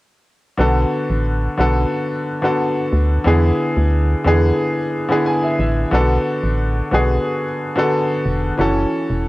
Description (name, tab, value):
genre	dancehall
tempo	90 BPM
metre	4/4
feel	straight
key	B dorian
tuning	A4 = 442 Hz
part	clear grand piano	accompaniment	0.6-9.3 s	D3 to G#5	-17 LUFS	equal	cassette tape
part	organ-like FM bass	bass	0.6-9.3 s	E1 to E2	-17 LUFS	equal	none
room	light reverb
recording	home recording on cassette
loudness	-15 LUFS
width	side -19 dB against mid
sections	0.6-9.3 A section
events	grand piano fill 4.9-5.9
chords	0.6 Bm7; 3.3 E7; 5.9 Bm7; 8.6 F#m7